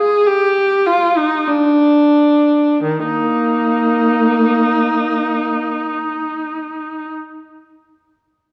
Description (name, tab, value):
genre	classical, baroque-style suite movement for unaccompanied viola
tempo	free time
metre	none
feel	none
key	Eb major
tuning	A4 = 441 Hz
part	rich viola	solo	0.0-7.1 s	Eb3 to Ab4	-16 LUFS	equal	none
room	wet concert hall reverb, RT60 1.9 s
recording	dark, warm production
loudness	-15 LUFS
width	mono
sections	0.0-2.8 A section; 2.8-8.0 B section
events	slowing down 0.0-2.8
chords	none